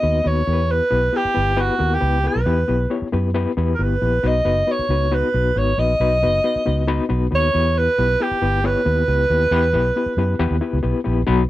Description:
uptempo 1960s-style soul; 136 BPM; 4/4; straight; A4 = 441 Hz
warm alto saxophone; melody; 0.0-10.8 s; F#4 to D#5; -20 LUFS; right 1 dB
overdriven reed electric piano; accompaniment; 0.0-11.4 s; F#3 to C#5; -23 LUFS; left 4 dB; fast tremolo
vintage muted fingered electric bass; bass; 0.0-11.4 s; F#1 to F#2; -20 LUFS; right 1 dB
light reverb; -16 LUFS; side -15 dB against mid
0.0-11.3 A section
0.5 Em; 4.2 B; 7.5 Em
0.26 | 0.70 1.14 1.58 2.03 | 2.47 2.91 3.35 3.80 | 4.24 4.68 5.12 5.56 | 6.00 6.45 6.89 7.33 | 7.77 8.21 8.65 9.09 | 9.53 9.97 10.40 10.84 | 11.28

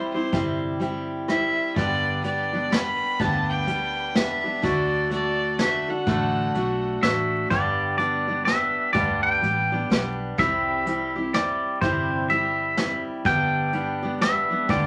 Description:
honky-tonk and classic country; 125 BPM; 3/4; swing 62% on 8ths; G major; A4 = 440 Hz
clear fiddle; second line; 0.0-7.0 s; C5 to B5; -28 LUFS; equal
picked steel-string acoustic guitar; accompaniment; 0.0-14.9 s; G2 to A4; -29 LUFS; equal
vintage muted fingered electric bass; bass; 0.0-14.9 s; G1 to D2; -35 LUFS; equal
vintage brush drum kit; drums; 0.3-14.8 s; hi-hat, kick drum, rim click, snare drum; -29 LUFS; equal
twangy electric guitar; melody; 7.0-14.9 s; C5 to G5; -26 LUFS; equal
wet studio reverb, RT60 0.5 s; vinyl crackle; -24 LUFS; mono
0.0-7.5 A section; 7.5-14.9 A section
fiddle solo 0.0-7.5
0.0 C; 1.8 G; 4.6 D; 7.5 G; 10.4 C; 13.3 G
| 0.33 0.81 1.29 | 1.76 2.24 2.72 | 3.20 3.68 4.16 | 4.64 5.12 5.60 | 6.08 6.55 7.03 | 7.51 7.99 8.47 | 8.95 9.43 9.91 | 10.39 10.87 11.34 | 11.82 12.30 12.78 | 13.26 13.73 14.21 | 14.69

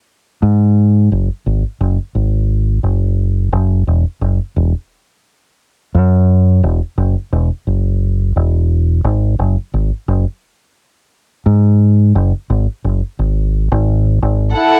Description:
trip hop; 87 BPM; 4/4; swing 54% on 16ths; A4 = 440 Hz
deep dub fingered electric bass; bass; 0.4-14.5 s; E1 to G#2; -14 LUFS; equal; tube saturation
warm chamber violin section; sustained chords; 14.6-14.8 s; E4 to F#5; -12 LUFS; equal; vintage 12-bit sampler grit, cassette tape
little or no reverb; home recording on cassette; -15 LUFS; mono
0.0-14.6 A section
0.0 F#sus2; 3.5 Esus2; 9.0 N.C.
0.08 | 0.77 1.46 2.15 2.84 | 3.53 4.22 4.91 5.59 | 6.29 6.97 7.66 8.35 | 9.04 9.73 10.42 11.11 | 11.80 12.49 13.18 13.87 | 14.56

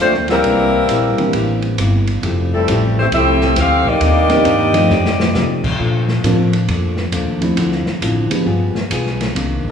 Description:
jazz, big band swing; 135 BPM; 4/4; swing 65% on 8ths; G minor; A4 = 442 Hz
warm saxophone section; melody; 0.0-5.7, 9.7 s; G3 to F5; -16 LUFS; left 3 dB
dark trombone section; second line; 0.0-5.7, 9.7 s; C3 to F4; -21 LUFS; right 4 dB
archtop guitar, miked and amplified; accompaniment; 0.0-9.7 s; Bb2 to C5; -23 LUFS; left 2 dB
upright bass; bass; 0.0-9.7 s; F1 to C3; -19 LUFS; equal
open jazz drum kit; drums; 0.1-9.7 s; crash cymbal, hi-hat, kick drum, ride cymbal, snare drum; -23 LUFS; equal
dark upright piano; accompaniment; 1.2-8.5 s; Eb3 to A4; -20 LUFS; right 1 dB
wet recital hall reverb, RT60 1.5 s; recorded in a church or concert hall, studio ambience; -13 LUFS; side -7 dB against mid
0.0-9.7 A section
drum fill 4.9-5.4
0.4 C7; 2.2 Fmaj9; 4.0 Cm9; 4.9 F9; 5.8 Bbmaj7; 7.6 Dm9; 8.5 G7b9
0.00 | 0.45 0.89 1.34 1.78 | 2.23 2.68 3.12 3.57 | 4.01 4.46 4.91 5.35 | 5.80 6.24 6.69 7.13 | 7.58 8.03 8.47 8.92 | 9.36

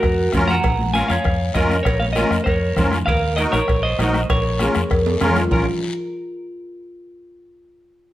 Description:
latin, cumbia; 197 BPM; 4/4; straight; Bb minor; A4 = 440 Hz
clean electric guitar; melody; 0.0-5.7 s; Gb4 to Bb5; -21 LUFS; right 1 dB; spring reverb, slapback echo, plate reverb
vintage muted fingered electric bass; bass; 0.0-5.7 s; Bb1 to F2; -22 LUFS; equal
bombo; percussion; 0.0-5.6 s; -24 LUFS; left 1 dB
cowbell and timbales; percussion; 0.0-5.6 s; -30 LUFS; right 6 dB
guiro; percussion; 0.0-5.6 s; -34 LUFS; left 5 dB
musette accordion; accompaniment; 0.3-5.7 s; Db4 to Bb4; -23 LUFS; equal
congas; percussion; 0.3-5.6 s; -27 LUFS; left 1 dB
marimba with medium mallets; second line; 4.6-5.7 s; F4 to Bb4; -26 LUFS; left 2 dB
light reverb; -16 LUFS; side -14 dB against mid
0.0-5.5 A section; 5.5-6.7 B section
drum fill 5.1-5.5
0.0 Bbm; 3.1 Ebm; 4.3 Bbm
0.03 0.33 | 0.64 0.94 1.25 1.55 | 1.86 2.16 2.47 2.77 | 3.08 3.38 3.69 3.99 | 4.30 4.60 4.91 5.21 | 5.51

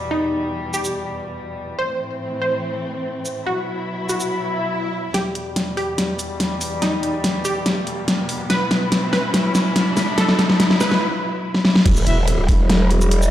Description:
heavy wobble dubstep; 143 BPM; 4/4; half-time; E harmonic minor; A4 = 440 Hz
dark chamber string section; sustained chords; 0.0-13.3 s; E2 to E4; -25 LUFS; left 1 dB; sidechain pumping, low-pass filter
wide unison pluck; melody; 0.1-11.0 s; D#4 to C5; -25 LUFS; equal; ping-pong delay
dubstep drum kit; drums; 0.7-13.3 s; crash cymbal, hi-hat, shaker, snare drum; -19 LUFS; equal
swell, riser and impact; sound effects; 4.4-13.3 s; -28 LUFS; equal
growl bass; bass; 11.9-13.3 s; E1; -17 LUFS; equal; chorus, overdrive
electronic kick drum; drums; 11.9-12.6 s; -16 LUFS; equal
clear brass ensemble; stabs; 12.1-12.2 s; E4 to E5; -28 LUFS; equal; ping-pong delay
moderate lush hall reverb, RT60 1.8 s; played on a big sound system in a bare room, stone room reverb; -18 LUFS; side -12 dB against mid
0.0-5.1 A section; 5.1-11.9 B section; 11.9-13.3 C section
swell 4.4-5.1; build-up 5.1-11.9; drum fill 5.1-11.0, 11.5-11.9; riser 5.1-11.0; filter sweep on string section 5.1-11.9; break 11.0-11.9; drop 11.9-13.3; impact 11.9-13.3
0.0 Em; 1.8 Am; 3.5 Bsus4; 5.1 Em; 8.5 Bsus4; 11.9 Emadd9
| 0.11 0.53 0.95 1.37 | 1.79 2.21 2.62 3.04 | 3.46 3.88 4.30 4.72 | 5.14 5.56 5.98 6.40 | 6.82 7.24 7.66 8.08 | 8.50 8.92 9.34 9.76 | 10.18 10.60 11.02 11.44 | 11.86 12.28 12.70 13.12

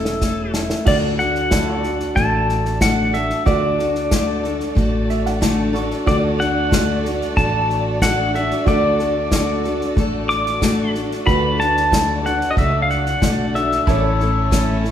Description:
honky-tonk and classic country; 92 BPM; 4/4; straight; D major; A4 = 440 Hz
pedal steel guitar; melody; 0.0-14.8 s; A4 to D6; -21 LUFS; left 1 dB
bright upright piano; accompaniment; 0.0-14.9 s; E4 to C#6; -28 LUFS; right 6 dB
picked steel-string acoustic guitar; accompaniment; 0.0-14.9 s; A2 to A4; -22 LUFS; left 2 dB
pedal steel guitar; sustained chords; 0.0-14.9 s; E4 to D5; -30 LUFS; right 2 dB
upright bass; bass; 0.0-14.9 s; E1 to D2; -25 LUFS; equal
unplugged drum kit; drums; 0.1-14.9 s; crash cymbal, hi-hat, kick drum, snare drum; -21 LUFS; equal
warm symphonic violin section; sustained chords; 0.9-14.9 s; A3 to D5; -28 LUFS; equal
wet recital hall reverb, RT60 1.4 s; recorded in a church or concert hall; -16 LUFS; side -10 dB against mid
0.9-14.9 A section
drum fill 0.0-0.9; upright piano fill 4.8-6.1
0.0 A; 0.9 D; 13.9 A
0.22 | 0.87 1.52 2.17 2.82 | 3.47 4.12 4.77 5.42 | 6.07 6.72 7.37 8.02 | 8.67 9.32 9.97 10.62 | 11.27 11.92 12.57 13.22 | 13.87 14.52

